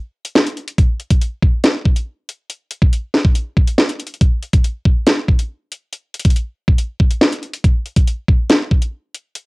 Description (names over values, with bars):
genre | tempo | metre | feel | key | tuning
hip hop | 140 BPM | 4/4 | half-time | none | none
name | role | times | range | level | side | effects
drill drum kit | drums | 0.2-9.5 s | hi-hat, kick drum, snare drum | -13 LUFS | equal | cassette tape
room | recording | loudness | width
light reverb | home recording on cassette | -14 LUFS | side -25 dB against mid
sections
0.0-9.5 A section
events
break 0.0-0.8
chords
none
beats
0.35 | 0.78 1.21 1.64 2.07 | 2.50 2.93 3.35 3.78 | 4.21 4.64 5.07 5.50 | 5.93 6.36 6.78 7.21 | 7.64 8.07 8.50 8.93 | 9.36